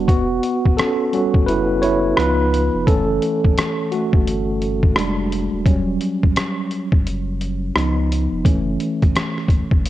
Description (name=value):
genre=lo-fi hip hop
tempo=86 BPM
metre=4/4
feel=swing 61% on 16ths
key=E dorian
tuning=A4 = 439 Hz
part: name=tine electric piano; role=accompaniment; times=0.0-9.9 s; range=E3 to C#5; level=-19 LUFS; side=right 1 dB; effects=medium stereo tremolo, cassette tape, low-pass filter
part: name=warm sub bass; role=bass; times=0.0-9.9 s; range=D#1 to C#2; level=-24 LUFS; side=equal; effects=none
part: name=trip hop sampler-style drum kit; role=drums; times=0.1-9.9 s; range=hi-hat, kick drum, rim click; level=-18 LUFS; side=equal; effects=none
room=light reverb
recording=cassette tape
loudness=-16 LUFS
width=side -14 dB against mid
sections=0.1-9.9 A section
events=tine electric piano solo 0.1-9.9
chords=0.1 Em69; 2.2 C#7; 2.9 F#m7; 5.0 Fm69; 5.7 Em69; 7.8 C#7; 8.5 F#m7